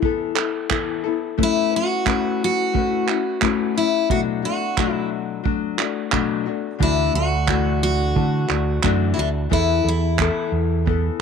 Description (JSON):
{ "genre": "acoustic pop", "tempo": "88 BPM", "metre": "4/4", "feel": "swing 55% on 16ths", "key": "D major", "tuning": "A4 = 439 Hz", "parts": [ { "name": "nylon-string guitar", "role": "accompaniment", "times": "0.0-11.2 s", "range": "B2 to B4", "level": "-23 LUFS", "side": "left 11 dB", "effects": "none" }, { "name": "unplugged drum kit", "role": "drums", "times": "0.0-11.0 s", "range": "handclaps, kick drum", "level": "-24 LUFS", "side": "right 6 dB", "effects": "none" }, { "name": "picked steel-string acoustic guitar", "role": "melody", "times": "1.4-10.5 s", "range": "D4 to F#4", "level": "-22 LUFS", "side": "left 1 dB", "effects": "none" }, { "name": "picked electric bass", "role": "bass", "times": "6.8-11.1 s", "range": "D2 to D3", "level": "-21 LUFS", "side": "right 2 dB", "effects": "none" } ], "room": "moderate spring reverb, RT60 2.0 s", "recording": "1960s-style stereo with parts hard left and right", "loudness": "-18 LUFS", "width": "side -6 dB against mid", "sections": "0.0-11.2 A section", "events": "none", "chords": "0.0 Esus4; 1.4 Aadd9; 4.1 Bm7; 6.8 Dadd9; 9.5 Esus4" }